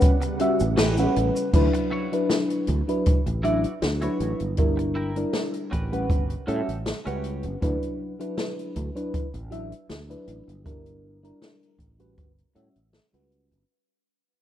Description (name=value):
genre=vaporwave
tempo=79 BPM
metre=4/4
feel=swing 53% on 16ths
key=D major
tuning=A4 = 440 Hz
part: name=mellow FM electric piano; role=accompaniment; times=0.0-13.7 s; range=F#3 to F#5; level=-26 LUFS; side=equal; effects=analog chorus, analog delay
part: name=soft string machine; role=sustained chords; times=0.0-1.5 s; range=C#3 to F#5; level=-35 LUFS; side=equal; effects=ensemble chorus
part: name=semi-hollow electric guitar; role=riff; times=0.0-7.4 s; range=C#4 to D5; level=-39 LUFS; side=right 2 dB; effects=analog chorus, analog delay
part: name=kick drum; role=drums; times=0.0-12.3 s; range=none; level=-23 LUFS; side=equal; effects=none
part: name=open jazz drum kit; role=drums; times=0.0-13.7 s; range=cabasa, crash cymbal, hi-hat, snare drum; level=-29 LUFS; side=left 1 dB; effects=none
part: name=sustaining fretless electric bass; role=bass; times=0.6-13.6 s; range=G1 to A2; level=-28 LUFS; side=equal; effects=analog chorus
room=moderate plate reverb, RT60 2.4 s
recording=rough home demo mix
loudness=-22 LUFS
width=side -11 dB against mid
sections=0.0-1.5 A section; 1.5-13.7 B section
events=band accent 0.8-1.2; fade-out 1.5-13.7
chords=0.0 A13; 1.5 D69; 4.6 Gm6; 5.7 A13; 7.6 D69; 10.7 Gm6; 11.8 A13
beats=0.02 0.78 | 1.54 2.30 3.06 3.82 | 4.58 5.34 6.10 6.86 | 7.62 8.38 9.13 9.89 | 10.65 11.41 12.17 12.93